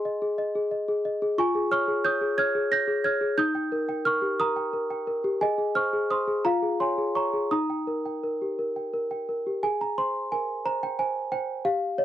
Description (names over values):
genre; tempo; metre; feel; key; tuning
classical, lullaby for celesta; 59 BPM (dotted quarters); 6/8; rubato; Ab major; A4 = 440 Hz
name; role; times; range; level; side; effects
small celesta; solo; 0.0-12.0 s; Eb4 to Bb6; -24 LUFS; equal; none
room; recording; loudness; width
light reverb; dry, close 1970s-style studio recording; -24 LUFS; side -12 dB against mid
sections
0.0-9.6 A section; 9.6-12.0 B section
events
none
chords
0.0 Ab; 1.4 Db/F; 3.4 Eb; 5.4 Ab; 6.4 Db/F; 7.5 Eb; 9.6 Ab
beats
0.38 | 1.37 2.37 | 3.38 4.39 | 5.41 6.44 | 7.51 8.57 | 9.63 10.65 | 11.64